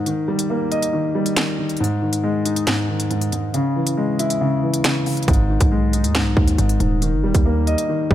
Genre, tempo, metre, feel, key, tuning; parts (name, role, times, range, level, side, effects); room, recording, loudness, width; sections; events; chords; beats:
hip hop, drill; 138 BPM; 4/4; half-time; G# harmonic minor; A4 = 439 Hz
dark grand piano; accompaniment; 0.0-8.1 s; G#2 to D#5; -19 LUFS; left 1 dB; low-pass filter
drill drum kit; drums; 0.1-8.1 s; finger snaps, hi-hat, kick drum, snare drum; -20 LUFS; equal
hard-hitting 808-style bass; bass; 5.3-8.1 s; D#1 to D#2; -19 LUFS; right 1 dB
light reverb; -17 LUFS; side -12 dB against mid
0.0-8.1 A section
break 0.0-5.3
0.1 D#; 1.8 G#5; 3.5 C#m; 5.3 G#m; 7.0 D#
| 0.06 0.50 0.93 1.37 | 1.80 2.24 2.67 3.11 | 3.54 3.98 4.41 4.84 | 5.28 5.71 6.15 6.58 | 7.02 7.45 7.89